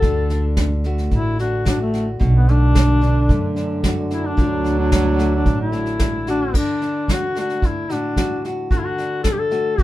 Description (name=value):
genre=acoustic folk duo or small band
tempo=111 BPM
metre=4/4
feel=straight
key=D major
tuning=A4 = 441 Hz
part: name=warm duduk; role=melody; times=0.0-9.8 s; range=A3 to A4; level=-22 LUFS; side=left 2 dB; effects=none
part: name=nylon-string guitar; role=accompaniment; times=0.0-9.8 s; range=F#2 to F#4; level=-27 LUFS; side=left 2 dB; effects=none
part: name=upright bass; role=bass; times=0.0-6.5 s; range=A1 to F#2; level=-19 LUFS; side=right 1 dB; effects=none
part: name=soft brush drum kit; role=drums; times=0.0-9.8 s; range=crash cymbal, kick drum, snare drum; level=-21 LUFS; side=equal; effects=none
part: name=mellow French horn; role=second line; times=2.2-6.2 s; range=D3 to F#3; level=-25 LUFS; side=right 3 dB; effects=none
room=light reverb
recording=band playing live in one room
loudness=-16 LUFS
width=side -15 dB against mid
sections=0.0-6.5 A section; 6.5-9.8 B section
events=duduk solo 0.0-6.5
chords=0.0 D; 2.2 Bm7; 4.4 D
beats=| 0.03 0.57 1.12 1.66 | 2.21 2.75 3.29 3.84 | 4.38 4.92 5.46 6.00 | 6.54 7.08 7.62 8.16 | 8.70 9.24 9.78